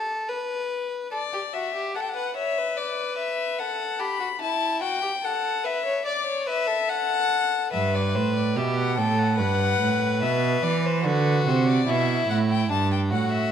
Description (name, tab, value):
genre	classical, baroque-style fugue for string quartet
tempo	72 BPM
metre	4/4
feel	straight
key	G major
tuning	A4 = 440 Hz
part	warm violin	second line	0.0-13.5 s	D4 to D5	-28 LUFS	left 2 dB	none
part	warm violin	melody	1.1-13.5 s	B4 to B5	-26 LUFS	left 6 dB	none
part	rich cello	bass	7.7-13.5 s	G2 to E3	-23 LUFS	right 4 dB	none
room	moderate recital hall reverb, RT60 1.4 s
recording	none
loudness	-22 LUFS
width	side -8 dB against mid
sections	0.0-13.5 A section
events	none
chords	0.0 N.C.; 1.1 D; 4.4 A7(no3)/E; 6.1 D; 7.7 G; 11.0 D7; 12.7 G5